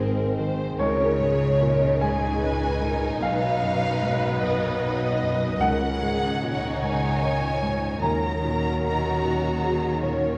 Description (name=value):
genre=cinematic, emotional film score for orchestra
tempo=50 BPM (dotted quarters)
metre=6/8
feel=rubato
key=unclear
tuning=A4 = 440 Hz
part: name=rich studio violin section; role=melody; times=0.0-10.4 s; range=C4 to Gb4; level=-36 LUFS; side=equal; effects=none
part: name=warm grand piano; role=accompaniment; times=0.0-10.4 s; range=B1 to Bb5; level=-30 LUFS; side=equal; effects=none
part: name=warm studio viola section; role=accompaniment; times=0.0-10.4 s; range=Gb4 to Db5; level=-33 LUFS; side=equal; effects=none
part: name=warm French horn section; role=sustained chords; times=0.0-10.4 s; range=Eb3 to Eb4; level=-34 LUFS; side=equal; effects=none
part: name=rich studio cello section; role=bass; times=0.0-10.4 s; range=Ab2 to Eb3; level=-32 LUFS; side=equal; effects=none
part: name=warm studio double bass section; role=bass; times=0.0-10.4 s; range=Ab1 to Eb2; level=-34 LUFS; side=equal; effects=none
part: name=warm studio violin section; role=second line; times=0.8-10.4 s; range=Db5 to Bb5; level=-31 LUFS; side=equal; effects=none
room=wet recital hall reverb, RT60 1.7 s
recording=worn, warbling old tape, cassette tape, warbly pitch drift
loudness=-24 LUFS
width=mono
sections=0.0-10.4 A section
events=none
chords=0.0 Ab; 0.8 Dbsus2; 3.2 B; 5.6 Dbsus2; 8.0 Ebm7